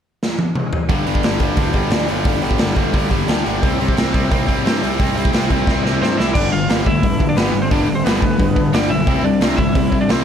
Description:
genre	punk rock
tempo	176 BPM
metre	4/4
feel	straight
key	unclear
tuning	A4 = 445 Hz
part	raw garage drum kit	drums	0.2-10.2 s	crash cymbal, hi-hat, kick drum, snare drum, toms	-18 LUFS	equal	none
part	distorted electric guitar	riff	0.9-10.2 s	G2 to C4	-21 LUFS	left 15 dB	overdrive
part	tight distorted guitar	riff	0.9-10.2 s	G2 to C4	-23 LUFS	right 13 dB	distortion
part	fuzz picked electric bass	bass	0.9-10.2 s	G1 to C3	-22 LUFS	right 1 dB	overdrive
part	lightly driven lead guitar	melody	6.0-10.2 s	B3 to F5	-22 LUFS	equal	none
room	little or no reverb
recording	none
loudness	-14 LUFS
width	side -8 dB against mid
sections	0.9-6.4 A section; 6.4-10.2 B section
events	drum fill 0.2-0.9, 5.7-6.4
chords	0.0 N.C.; 0.9 G5; 3.6 C5; 6.4 G; 9.1 C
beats	0.22 0.56 | 0.90 1.24 1.58 1.92 | 2.26 2.60 2.94 3.29 | 3.63 3.97 4.31 4.65 | 4.99 5.33 5.67 6.01 | 6.35 6.69 7.03 7.37 | 7.71 8.05 8.39 8.73 | 9.07 9.41 9.76 10.10

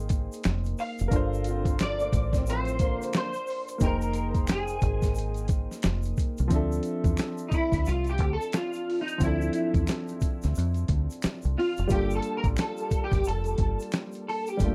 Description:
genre	R&B, neo-soul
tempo	89 BPM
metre	4/4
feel	swing 61% on 16ths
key	D minor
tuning	A4 = 440 Hz
part	electric guitar at the edge of break-up	melody	0.0-14.7 s	Eb4 to F5	-33 LUFS	equal	ensemble chorus
part	warm upright piano	accompaniment	0.0-14.7 s	F3 to G5	-36 LUFS	equal	none
part	deep dub fingered electric bass	bass	0.0-14.7 s	F1 to F2	-31 LUFS	equal	none
part	boom bap sampler-style drum kit	drums	0.1-14.7 s	hi-hat, kick drum, snare drum	-30 LUFS	equal	none
part	tube shaker and finger snaps	percussion	0.1-14.7 s	none	-47 LUFS	equal	none
part	bright trombone section	stabs	1.5-3.3 s	F2 to F4	-38 LUFS	equal	tape echo
room	little or no reverb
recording	dry, close 1970s-style studio recording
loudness	-28 LUFS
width	mono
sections	0.0-6.5 A section; 6.5-14.7 B section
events	clean electric guitar solo 6.5-14.7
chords	0.0 Fm11; 1.1 Gm11; 3.8 Fm11; 6.5 Dm9; 11.9 Gm9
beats	0.44 | 1.11 1.79 2.46 3.14 | 3.81 4.48 5.16 5.83 | 6.51 7.18 7.86 8.53 | 9.20 9.88 10.55 11.22 | 11.90 12.57 13.25 13.92 | 14.60

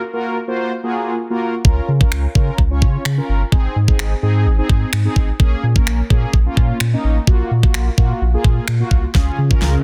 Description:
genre	dance-pop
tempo	128 BPM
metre	4/4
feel	straight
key	Db major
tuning	A4 = 440 Hz
part	mellow synth brass	accompaniment	0.1-9.8 s	Bb3 to Db5	-25 LUFS	equal	chorus, phaser, sidechain pumping
part	saturated sub bass	bass	1.6-9.8 s	G1 to Db3	-19 LUFS	equal	sidechain pumping
part	pop drum kit	drums	1.6-9.7 s	finger snaps, kick drum, snare drum	-17 LUFS	equal	soft clipping on snare
part	warm analog pad	sustained chords	9.3-9.8 s	Db3 to Ab4	-24 LUFS	equal	chorus, sidechain pumping
part	riser	sound effects	9.6-9.8 s	none	-38 LUFS	equal	none
room	little or no reverb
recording	dense, heavily limited modern master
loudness	-16 LUFS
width	mono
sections	0.0-9.1 A section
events	drum fill 9.1-9.8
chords	0.0 Gbmaj7/Bb; 1.6 Db6; 3.5 Ab; 5.4 Bbm7; 7.3 Gbmaj7/Bb; 9.1 Db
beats	0.24 0.71 1.18 | 1.65 2.12 2.59 3.06 | 3.52 3.99 4.46 4.93 | 5.40 5.87 6.34 6.80 | 7.27 7.74 8.21 8.68 | 9.15 9.62

